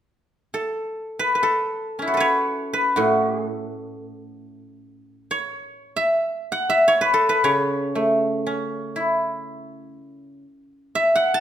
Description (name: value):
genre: chinese traditional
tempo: free time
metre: none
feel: none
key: A gong mode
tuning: A4 = 442 Hz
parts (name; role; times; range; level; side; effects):
- guzheng; solo; 0.5-11.4 s; A2 to A5; -20 LUFS; equal; none
room: moderate recital hall reverb, RT60 1.2 s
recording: minimal, uncompressed stereo recording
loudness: -19 LUFS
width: side -10 dB against mid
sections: 0.0-11.4 A section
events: none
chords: none